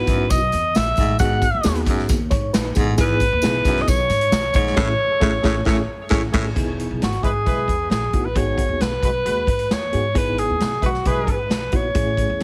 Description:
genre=uptempo 1960s-style soul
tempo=134 BPM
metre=4/4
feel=straight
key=E major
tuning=A4 = 442 Hz
part: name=breathy alto saxophone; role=melody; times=0.0-12.4 s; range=F#4 to F#5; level=-24 LUFS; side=equal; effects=none
part: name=mellow reed electric piano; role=accompaniment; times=0.0-12.4 s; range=A3 to C#5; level=-28 LUFS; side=equal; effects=fast tremolo, plate reverb
part: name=upright bass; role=bass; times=0.0-12.4 s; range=E1 to G#2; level=-27 LUFS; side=equal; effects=none
part: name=growling baritone saxophone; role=riff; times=0.1-6.5 s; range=E2 to A2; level=-28 LUFS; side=equal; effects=none
part: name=swinging big-band drum kit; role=drums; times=0.1-12.4 s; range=crash cymbal, hi-hat, kick drum, snare drum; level=-24 LUFS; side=equal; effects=none
part: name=tambourine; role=percussion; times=0.1-4.6 s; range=none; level=-37 LUFS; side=equal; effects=none
part: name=mellow horn section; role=second line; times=4.8-11.4 s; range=G#3 to C#5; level=-31 LUFS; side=equal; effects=plate reverb, tape echo
room=light reverb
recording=heavily compressed radio sound, multiband compression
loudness=-20 LUFS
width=mono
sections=0.0-6.6 A section; 6.6-12.4 B section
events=band accent 4.8-6.6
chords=0.0 Emaj7; 1.2 G#m7; 3.0 Emaj7/G#; 4.8 Amaj7; 6.6 Emaj7; 8.4 G#m7; 10.2 Emaj7/G#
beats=0.30 0.75 | 1.19 1.64 2.09 2.53 | 2.98 3.43 3.87 4.32 | 4.76 5.21 5.66 6.11 | 6.55 7.00 7.45 7.90 | 8.35 8.80 9.25 9.70 | 10.15 10.60 11.05 11.50 | 11.96 12.40

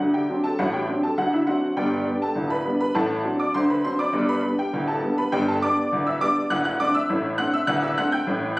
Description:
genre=ragtime piano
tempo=101 BPM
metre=2/4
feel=straight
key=G major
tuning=A4 = 440 Hz
part: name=honky-tonk upright piano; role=solo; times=0.0-8.6 s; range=D1 to G6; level=-20 LUFS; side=equal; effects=none
room=light reverb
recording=recorded on a phone in the room, studio reverb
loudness=-20 LUFS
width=side -21 dB against mid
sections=0.0-8.6 A section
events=none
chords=0.0 D7; 1.8 G; 3.0 D7/A; 4.1 G; 6.5 D7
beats=| 0.58 1.17 | 1.76 2.36 | 2.95 3.54 | 4.13 4.73 | 5.32 5.91 | 6.50 7.09 | 7.68 8.27

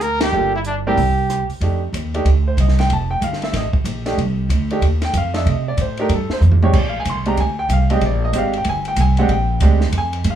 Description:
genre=jazz, small-group swing and bop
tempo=188 BPM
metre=4/4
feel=swing 63% on 8ths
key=unclear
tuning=A4 = 437 Hz
part: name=clear trumpet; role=melody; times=0.0-1.5 s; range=D4 to A#4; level=-19 LUFS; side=right 1 dB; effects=plate reverb
part: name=upright bass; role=bass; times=0.0-10.4 s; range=F1 to C3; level=-17 LUFS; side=right 1 dB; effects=none
part: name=compact cocktail drum kit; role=drums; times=0.0-10.3 s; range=crash cymbal, hi-hat, kick drum, ride cymbal, rim click, snare drum, toms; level=-24 LUFS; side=equal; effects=none
part: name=bright upright piano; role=accompaniment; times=0.3-10.4 s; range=G3 to C6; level=-21 LUFS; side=right 1 dB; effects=plate reverb
room=light reverb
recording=rough home demo mix, small room ambience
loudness=-15 LUFS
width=side -10 dB against mid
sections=0.0-1.6 A section; 1.6-10.4 B section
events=band accent 0.2; drum fill 6.4-6.7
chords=0.3 Gm7; 1.0 C5; 1.6 F13; 6.7 Bb13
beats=0.01 | 0.33 0.65 0.97 1.29 | 1.61 1.93 2.25 2.57 | 2.89 3.21 3.53 3.85 | 4.17 4.49 4.81 5.13 | 5.45 5.77 6.09 6.41 | 6.73 7.05 7.37 7.69 | 8.01 8.33 8.65 8.97 | 9.29 9.61 9.93 10.25

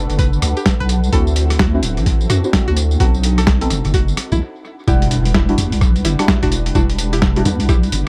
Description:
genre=UK garage, two-step garage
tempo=128 BPM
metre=4/4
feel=swing 62% on 16ths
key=E minor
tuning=A4 = 444 Hz
part: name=warm analog pad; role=sustained chords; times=0.0-8.1 s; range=G3 to F#5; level=-32 LUFS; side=equal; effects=chorus, sidechain pumping
part: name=deep soft wobble bass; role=bass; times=0.0-8.0 s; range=D1 to F#2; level=-19 LUFS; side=equal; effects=chorus
part: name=ethereal airy pad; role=texture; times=0.0-4.4 s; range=D4 to B5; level=-35 LUFS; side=equal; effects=none
part: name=boom bap sampler-style drum kit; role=drums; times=0.1-8.0 s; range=bongos, hi-hat, rim click, snare drum, tambourine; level=-23 LUFS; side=equal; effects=dub echo
part: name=string-like resonator pluck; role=melody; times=0.2-7.9 s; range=G3 to B4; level=-27 LUFS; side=equal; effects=chorus, vintage 12-bit sampler grit, analog delay
part: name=electronic kick drum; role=drums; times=0.2-7.8 s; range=none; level=-19 LUFS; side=equal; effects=none
part: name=deep mellow chord stab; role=stabs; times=1.1-7.4 s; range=G3 to F#5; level=-25 LUFS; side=equal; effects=chorus, phaser, cassette tape, tape echo
part: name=impact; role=sound effects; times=4.9-6.8 s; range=none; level=-28 LUFS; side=equal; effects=none
room=little or no reverb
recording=echo-heavy mix, vinyl crackle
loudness=-16 LUFS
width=mono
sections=0.0-4.9 A section; 4.9-8.1 B section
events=stop 4.4-4.9; drop 4.9-8.1; impact 4.9-6.8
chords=0.0 Bm7; 1.1 D9; 3.0 B7b9; 4.9 Em9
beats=0.19 0.66 | 1.12 1.59 2.06 2.53 | 3.00 3.47 3.94 4.41 | 4.88 5.34 5.81 6.28 | 6.75 7.22 7.69

